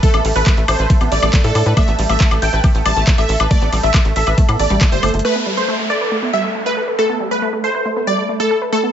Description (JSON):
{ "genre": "psychedelic trance", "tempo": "138 BPM", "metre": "4/4", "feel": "straight", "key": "A minor", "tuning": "A4 = 440 Hz", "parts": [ { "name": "supersaw stab", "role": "melody", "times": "0.0-8.9 s", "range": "A4 to A5", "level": "-19 LUFS", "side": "right 1 dB", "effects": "phaser, sidechain pumping, dub echo" }, { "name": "wide unison pluck", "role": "riff", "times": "0.0-8.9 s", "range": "G3 to B4", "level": "-22 LUFS", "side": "equal", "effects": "auto-pan, cassette tape, sidechain pumping, dub echo" }, { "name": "electronic kick drum", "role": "drums", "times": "0.0-4.9 s", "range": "none", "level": "-13 LUFS", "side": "equal", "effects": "overdrive" }, { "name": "garage drum kit", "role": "drums", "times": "0.0-5.3 s", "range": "handclaps, hi-hat, ride cymbal, woodblock", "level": "-21 LUFS", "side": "left 2 dB", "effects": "overdrive, low-pass filter on hats, low-pass filter on snare, low-pass filter on perc, low-pass filter on cymbals" }, { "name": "airy breathy pad", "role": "texture", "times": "0.0-8.9 s", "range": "A4 to B5", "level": "-24 LUFS", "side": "right 1 dB", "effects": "chorus, sidechain pumping" }, { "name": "tight sequencer bass", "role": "bass", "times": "0.1-5.2 s", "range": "G1 to A2", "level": "-17 LUFS", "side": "equal", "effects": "none" }, { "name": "formant-sweep wobble bass", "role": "second line", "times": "0.7-1.8 s", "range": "C4 to D4", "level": "-29 LUFS", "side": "right 4 dB", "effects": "none" }, { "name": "downlifter", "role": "sound effects", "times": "5.2-8.7 s", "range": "none", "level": "-26 LUFS", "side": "equal", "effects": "none" } ], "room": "light reverb", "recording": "nothing above 7.8 kHz", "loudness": "-13 LUFS", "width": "side -9 dB against mid", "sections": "0.0-5.2 A section; 5.2-8.9 B section", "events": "drop 0.0-5.2; drum fill 5.0", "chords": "0.0 A5", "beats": "| 0.03 0.47 0.90 1.33 | 1.77 2.20 2.64 3.07 | 3.51 3.94 4.38 4.81 | 5.25 5.68 6.12 6.55 | 6.99 7.42 7.86 8.29 | 8.73" }